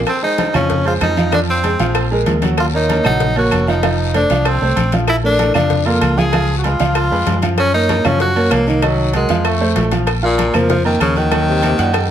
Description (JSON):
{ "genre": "latin, salsa", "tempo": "192 BPM", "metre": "4/4", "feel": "straight", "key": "Bb minor", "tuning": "A4 = 440 Hz", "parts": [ { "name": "fingered electric bass", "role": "bass", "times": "0.0-12.1 s", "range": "F1 to Gb2", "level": "-19 LUFS", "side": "equal", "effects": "none" }, { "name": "clear tenor saxophone", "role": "melody", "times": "0.1-12.1 s", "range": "Bb2 to Ab4", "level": "-18 LUFS", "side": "equal", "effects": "tape echo" }, { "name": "agogo bells and timbales", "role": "percussion", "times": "0.1-12.1 s", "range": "none", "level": "-25 LUFS", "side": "right 8 dB", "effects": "none" }, { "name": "claves", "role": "percussion", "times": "0.1-12.1 s", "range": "none", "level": "-29 LUFS", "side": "left 9 dB", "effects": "none" }, { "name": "congas", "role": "percussion", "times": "0.1-12.1 s", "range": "none", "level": "-24 LUFS", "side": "left 3 dB", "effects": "none" }, { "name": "cowbell", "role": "percussion", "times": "0.1-12.1 s", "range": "none", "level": "-26 LUFS", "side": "left 6 dB", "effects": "none" }, { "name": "guiro", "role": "percussion", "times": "0.1-12.1 s", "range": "none", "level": "-31 LUFS", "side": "left 7 dB", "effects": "none" }, { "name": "clear upright piano", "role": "accompaniment", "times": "0.2-12.0 s", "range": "Eb3 to Gb6", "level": "-19 LUFS", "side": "right 2 dB", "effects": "none" }, { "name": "warm trombone section", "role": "second line", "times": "11.5-12.1 s", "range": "Ab2 to C3", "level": "-21 LUFS", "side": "left 3 dB", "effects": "none" } ], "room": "moderate studio reverb, RT60 0.8 s", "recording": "none", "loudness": "-13 LUFS", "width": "side -10 dB against mid", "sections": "0.1-10.1 A section; 10.1-12.1 B section", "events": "none", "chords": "0.1 Dbmaj9; 1.3 Fm; 2.0 Bb5; 2.6 Ebm9; 3.8 F7; 5.1 Bbmaj7; 6.3 Db7; 7.6 Gbmaj7; 8.8 Cm7b5; 9.4 F; 10.1 Bb5; 11.3 Ebm" }